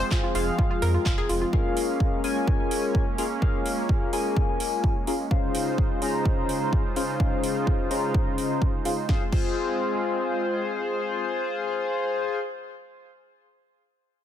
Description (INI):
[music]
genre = progressive house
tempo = 127 BPM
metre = 4/4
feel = straight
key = F minor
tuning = A4 = 439 Hz
[part]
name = warm analog pad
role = sustained chords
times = 0.0-12.2 s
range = Db3 to C5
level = -31 LUFS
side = right 2 dB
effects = chorus, tremolo, sidechain pumping
[part]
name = analog pluck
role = arpeggios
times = 0.0-1.5 s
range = F4 to Bb4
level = -30 LUFS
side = left 1 dB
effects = chorus, sidechain pumping, ping-pong delay
[part]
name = chorused polysynth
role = stabs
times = 0.0-12.4 s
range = Db4 to Bb5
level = -27 LUFS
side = left 4 dB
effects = sidechain pumping, ping-pong delay
[part]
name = round analog bass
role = bass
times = 0.0-1.4 s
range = F1 to F2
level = -26 LUFS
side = right 1 dB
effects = sidechain pumping
[part]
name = electronic kick drum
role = drums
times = 0.1-9.5 s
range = none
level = -24 LUFS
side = equal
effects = none
[part]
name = house drum kit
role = drums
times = 0.1-9.5 s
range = crash cymbal, handclaps, hi-hat, snare drum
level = -35 LUFS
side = right 3 dB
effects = sidechain pumping on hats, sidechain pumping on cymbals
[sound]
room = light reverb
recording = none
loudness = -23 LUFS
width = side -10 dB against mid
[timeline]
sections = 0.0-9.1 A section; 9.1-12.9 B section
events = filter sweep on analog polysynth 0.0-9.1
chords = 0.0 Fm; 1.5 Bbm7; 5.3 Dbmaj7; 9.1 Fm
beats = 0.11 0.58 1.06 | 1.53 2.00 2.48 2.95 | 3.42 3.89 4.36 4.84 | 5.31 5.78 6.25 6.73 | 7.20 7.67 8.14 8.62 | 9.09 9.56 10.03 10.51 | 10.98 11.45 11.92